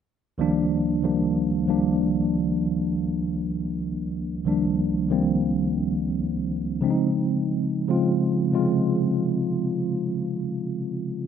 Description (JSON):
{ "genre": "R&B", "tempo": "70 BPM", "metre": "4/4", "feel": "straight", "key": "C minor", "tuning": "A4 = 441 Hz", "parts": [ { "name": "mellow tine electric piano", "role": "accompaniment", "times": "0.4-11.3 s", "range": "C2 to F4", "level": "-22 LUFS", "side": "equal", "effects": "medium stereo tremolo" } ], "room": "moderate lush hall reverb, RT60 2.5 s", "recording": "none", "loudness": "-22 LUFS", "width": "side -8 dB against mid", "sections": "0.4-11.3 A section", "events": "none", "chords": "0.4 Cm11; 6.8 Bbm11 (rootless)" }